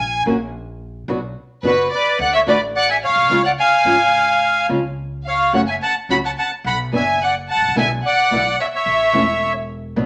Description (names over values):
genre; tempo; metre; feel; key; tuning
tango; 108 BPM; 4/4; rubato; unclear; A4 = 439 Hz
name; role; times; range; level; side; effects
bandoneon; melody; 0.0-9.5 s; F#4 to B5; -19 LUFS; equal; none
warm symphonic violin section; second line; 0.0-9.5 s; B4 to B5; -22 LUFS; equal; none
upright bass; bass; 0.0-10.1 s; E1 to D2; -32 LUFS; equal; none
flamenco guitar; accompaniment; 0.3-10.1 s; B2 to F#4; -24 LUFS; equal; none
room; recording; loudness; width
wet studio reverb, RT60 0.9 s; none; -18 LUFS; mono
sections
0.0-10.1 A section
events
none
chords
0.0 N.C.; 1.1 Bm; 2.2 D; 3.3 C#; 5.5 F#m; 6.7 Bm; 7.8 E7/B; 8.9 A